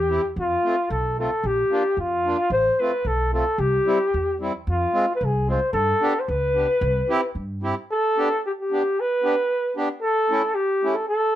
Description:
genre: alpine folk, alpine dance band.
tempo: 112 BPM.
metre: 2/4.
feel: straight.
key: C major, G major from 7.9 s.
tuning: A4 = 440 Hz.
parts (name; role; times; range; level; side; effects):
mellow flugelhorn; melody; 0.0-11.4 s; F4 to C5; -21 LUFS; equal; none.
upright bass; bass; 0.0-7.7 s; A1 to G2; -26 LUFS; equal; none.
accordion; accompaniment; 0.1-11.0 s; G3 to G4; -26 LUFS; equal; none.
room: moderate studio reverb, RT60 0.6 s.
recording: none.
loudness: -20 LUFS.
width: side -12 dB against mid.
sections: 0.0-7.9 A section; 7.9-11.4 B section.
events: none.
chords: 0.4 F; 1.4 Bb; 2.5 F/A; 3.6 C; 4.7 Fm; 5.7 G; 6.8 C; 7.9 G; 10.0 A.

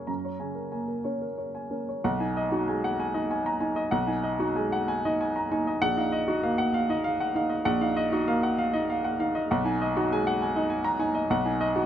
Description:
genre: neoclassical minimalist piano.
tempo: 65 BPM (dotted quarters).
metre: 6/8.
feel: rubato.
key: unclear.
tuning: A4 = 443 Hz.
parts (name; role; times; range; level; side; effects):
warm upright piano; solo; 0.0-11.9 s; A#1 to A#5; -25 LUFS; equal; none.
room: light reverb.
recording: close, detailed microphones.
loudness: -25 LUFS.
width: side -10 dB against mid.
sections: 0.0-2.0 A section; 2.0-11.9 B section.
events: none.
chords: 0.0 F#add9; 2.0 B6; 5.8 D#madd9/A#; 9.5 B6.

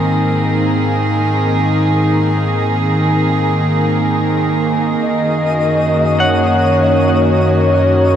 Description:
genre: ambient.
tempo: 51 BPM.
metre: 3/4.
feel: straight.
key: unclear.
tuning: A4 = 439 Hz.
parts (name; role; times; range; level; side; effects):
warm chamber string section; sustained chords; 0.0-8.2 s; Eb3 to Bb4; -15 LUFS; equal; shimmer reverb.
warm sub bass; bass; 0.0-8.2 s; Gb2 to Ab2; -19 LUFS; equal; none.
organ-like drone; drone; 0.0-8.2 s; Eb3 to Bb3; -20 LUFS; right 1 dB; ensemble chorus, built-in reverb.
breathy flute-like synth lead; melody; 5.0-8.2 s; Db5 to Eb5; -16 LUFS; left 1 dB; chorus, shimmer reverb.
twinkling granular texture; texture; 5.3-8.2 s; Eb5 to Eb6; -25 LUFS; right 1 dB; built-in reverb, shimmer reverb.
semi-hollow electric guitar; arpeggios; 6.2-7.7 s; Gb5; -20 LUFS; left 2 dB; shimmer reverb, diffuse ambient delay.
room: wet huge ambient reverb, RT60 8.0 s.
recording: dark, warm production.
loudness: -12 LUFS.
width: side -9 dB against mid.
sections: 0.0-8.2 A section.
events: none.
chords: 0.0 Abadd9; 5.0 Gb.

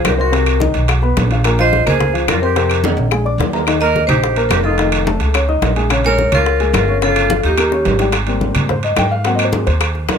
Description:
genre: Afro-Cuban jazz.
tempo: 215 BPM.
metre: 4/4.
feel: straight.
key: unclear.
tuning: A4 = 439 Hz.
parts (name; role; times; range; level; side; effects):
vibraphone with medium hard mallets; melody; 0.0-8.0 s; G4 to Eb5; -18 LUFS; left 3 dB; none.
breathy bright jazz flute; second line; 0.0-8.0 s; Eb4 to C5; -20 LUFS; right 8 dB; none.
dark grand piano; accompaniment; 0.0-10.1 s; Bb2 to Eb6; -19 LUFS; left 2 dB; none.
upright bass; bass; 0.0-10.2 s; F1 to Ab2; -18 LUFS; right 1 dB; none.
bongos; percussion; 0.0-10.2 s; none; -23 LUFS; left 8 dB; none.
claves; percussion; 0.1-10.0 s; none; -24 LUFS; left 9 dB; none.
congas; percussion; 0.1-10.2 s; none; -22 LUFS; left 1 dB; none.
timbales; percussion; 0.1-10.2 s; none; -22 LUFS; right 5 dB; none.
room: light reverb.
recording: close, detailed microphones.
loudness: -12 LUFS.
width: side -7 dB against mid.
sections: 0.0-8.1 A section; 8.1-10.2 B section.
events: drum fill 2.8-3.7, 7.6-8.1; grand piano solo 8.1-10.2.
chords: 0.3 Cm7b5; 0.9 B5; 1.4 Bbm11; 2.6 Fsus2; 3.1 Bb7; 3.7 Ebadd9; 4.8 F7alt; 5.9 Bbm7; 7.0 Aaug7/G; 7.6 Eb7; 8.1 Abmaj7; 9.3 Ab7.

